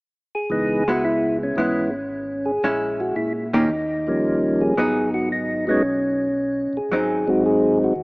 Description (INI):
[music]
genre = jazz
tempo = 113 BPM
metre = 4/4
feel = swing 69% on 8ths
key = C# minor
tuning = A4 = 441 Hz
[part]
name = percussive tonewheel organ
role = melody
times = 0.3-8.0 s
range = E3 to G#4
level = -20 LUFS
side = equal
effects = slow rotary speaker
[part]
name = mellow tonewheel organ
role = bass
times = 0.5-8.0 s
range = G#1 to A#2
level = -35 LUFS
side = equal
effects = chorus vibrato, slow rotary speaker
[part]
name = vintage hollow-body jazz guitar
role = accompaniment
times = 0.9-7.2 s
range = D#3 to G4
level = -24 LUFS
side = equal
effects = none
[sound]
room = moderate lush hall reverb, RT60 3.1 s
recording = rough home demo mix, small speaker sound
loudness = -19 LUFS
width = side -27 dB against mid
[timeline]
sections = 0.5-8.0 A section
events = none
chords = 0.5 C#m7; 2.6 A#m7b5; 3.7 D#7; 4.8 G#m7; 6.9 G#7